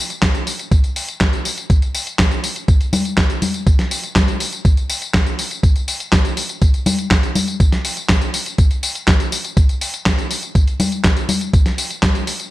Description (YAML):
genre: italo disco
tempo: 122 BPM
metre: 4/4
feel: straight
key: none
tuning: none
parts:
  - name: dusty soul sampler-style drum kit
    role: drums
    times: 0.1-12.5 s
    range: congas, handclaps, hi-hat, snare drum, tambourine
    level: -19 LUFS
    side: left 1 dB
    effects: gated reverb
  - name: electronic kick drum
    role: drums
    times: 0.2-12.1 s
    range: none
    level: -15 LUFS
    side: equal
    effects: none
room: little or no reverb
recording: none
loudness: -15 LUFS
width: side -16 dB against mid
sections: 0.0-12.5 A section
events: none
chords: none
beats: 0.22 0.71 1.21 | 1.70 2.19 2.68 3.17 | 3.67 4.16 4.65 5.14 | 5.63 6.12 6.62 7.11 | 7.60 8.09 8.58 9.08 | 9.57 10.06 10.55 11.04 | 11.54 12.03